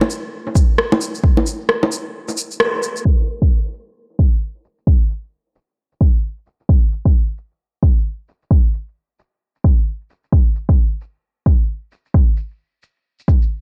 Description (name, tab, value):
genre	future garage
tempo	132 BPM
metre	4/4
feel	swing 60% on 16ths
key	none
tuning	none
part	electronic bongos, shaker and rim click	drums	0.0-13.5 s	none	-21 LUFS	equal	overdrive, analog delay
part	electronic kick drum	drums	0.6-13.4 s	none	-16 LUFS	equal	overdrive
room	light reverb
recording	echo-heavy mix, low-pass filter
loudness	-18 LUFS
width	mono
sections	0.0-3.1 A section; 3.1-13.6 B section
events	break 2.1-3.1; band accent 2.6; filter sweep 3.1-13.6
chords	none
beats	0.33 0.78 | 1.24 1.69 2.15 2.60 | 3.06 3.51 3.96 4.42 | 4.87 5.33 5.78 6.24 | 6.69 7.14 7.60 8.05 | 8.51 8.96 9.42 9.87 | 10.33 10.78 11.24 11.69 | 12.14 12.60 13.05